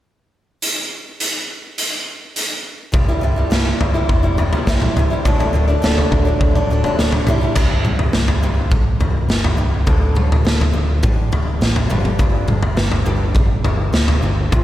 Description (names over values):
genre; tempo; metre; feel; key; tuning
quiet-loud alternative rock; 104 BPM; 4/4; straight; C major; A4 = 438 Hz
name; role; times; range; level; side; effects
raw garage drum kit; drums; 0.6-14.6 s; crash cymbal, hi-hat, kick drum, snare drum, toms; -17 LUFS; equal; none
picked old ladder-braced acoustic guitar; arpeggios; 2.9-14.6 s; C2 to E4; -23 LUFS; equal; tape echo, slapback echo
hollow-body short-scale picked electric bass; bass; 2.9-14.6 s; C1 to A1; -19 LUFS; equal; none
room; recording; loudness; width
light reverb, small room ambience; none; -15 LUFS; side -14 dB against mid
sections
0.6-2.9 A section; 2.9-7.6 B section; 7.6-14.6 C section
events
none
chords
0.6 N.C.; 2.9 C; 5.2 D; 7.3 C; 7.6 C5; 9.9 D5; 11.9 G5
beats
| 0.62 1.20 1.78 2.36 | 2.94 3.51 4.09 4.67 | 5.25 5.83 6.41 6.99 | 7.56 8.14 8.72 9.30 | 9.88 10.46 11.04 11.62 | 12.20 12.78 13.36 13.94 | 14.52